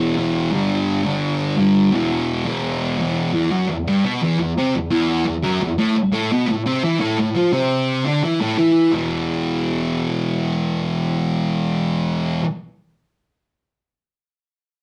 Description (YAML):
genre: rock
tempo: 171 BPM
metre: 4/4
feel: straight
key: E minor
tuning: A4 = 440 Hz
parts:
  - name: thick fuzz guitar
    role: solo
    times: 0.0-12.4 s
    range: E2 to F4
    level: -20 LUFS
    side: equal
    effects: distortion
room: wet small room reverb, RT60 0.6 s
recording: rough rehearsal-room recording, warm saturation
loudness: -20 LUFS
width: mono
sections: 0.0-3.3 A section; 3.3-8.9 B section; 8.9-11.7 C section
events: none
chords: 0.0 E5; 0.5 G5; 1.9 E5; 3.3 N.C.; 6.1 A5; 8.9 E5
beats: 0.17 | 0.52 0.87 1.22 1.57 | 1.93 2.28 2.63 2.98 | 3.33 3.68 4.03 4.38 | 4.73 5.08 5.43 5.78 | 6.13 6.48 6.83 7.18 | 7.53 7.88 8.23 8.58 | 8.93 9.28 9.63 9.98 | 10.33 10.68 11.03 11.38